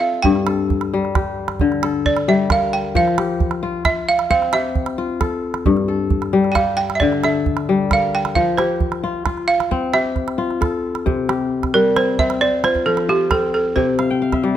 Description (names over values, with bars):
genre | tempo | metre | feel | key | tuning
west african traditional, West African string and xylophone music | 89 BPM (dotted quarters) | 12/8 | straight | unclear | A4 = 436 Hz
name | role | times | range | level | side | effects
balafon | melody | 0.0-14.6 s | G4 to G5 | -18 LUFS | right 3 dB | none
kora | arpeggios | 0.0-14.6 s | G2 to G5 | -19 LUFS | left 5 dB | none
calabash | percussion | 0.2-14.5 s | none | -23 LUFS | right 4 dB | none
room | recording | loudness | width
moderate recital hall reverb, RT60 1.6 s | close, detailed microphones | -16 LUFS | side -10 dB against mid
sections
0.0-11.1 A section; 11.1-14.6 B section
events
balafon solo 0.0-11.1; kora fill 14.0-14.6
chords
0.2 Gm; 3.0 F; 5.7 Gm; 8.4 F; 11.1 C5; 12.4 F5; 13.8 C5